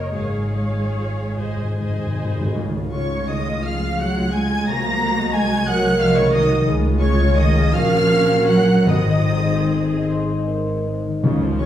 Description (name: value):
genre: classical, slow romantic movement for symphony orchestra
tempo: 48-61 BPM (dotted quarters)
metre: 6/8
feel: rubato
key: Db major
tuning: A4 = 440 Hz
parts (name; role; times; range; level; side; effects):
- warm studio violin section; melody; 0.0-11.7 s; Ab4 to Bb6; -28 LUFS; left 1 dB; none
- warm chamber violin section; second line; 0.0-11.7 s; Db5 to Bb5; -30 LUFS; left 3 dB; none
- rich chamber viola section; accompaniment; 0.0-11.7 s; Db3 to Db5; -28 LUFS; equal; none
- mellow French horn section; sustained chords; 0.0-11.2 s; F4 to Eb5; -24 LUFS; right 2 dB; none
- concert harp; arpeggios; 0.0-11.7 s; Gb2 to Eb6; -26 LUFS; left 4 dB; none
- dark studio cello section; bass; 0.0-11.7 s; Db3 to Bb3; -22 LUFS; right 1 dB; none
- rich studio double bass section; bass; 0.1-11.7 s; Ab1 to Db2; -24 LUFS; right 1 dB; none
- timpani; percussion; 1.4-3.6, 8.9-11.7 s; Ab2 to Db3; -25 LUFS; equal; none
- bright flute section; second line; 2.9-11.7 s; Db5 to Bb5; -27 LUFS; equal; none
room: wet recital hall reverb, RT60 1.5 s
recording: heard from further back in the room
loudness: -17 LUFS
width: side -11 dB against mid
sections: 0.0-2.6 A section; 2.6-11.7 B section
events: timpani fill 1.4-2.6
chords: 0.1 Db/Ab; 1.4 Ab; 2.6 Db; 4.7 Ab7/C; 6.7 Db; 7.7 Gb/Bb; 8.9 Ab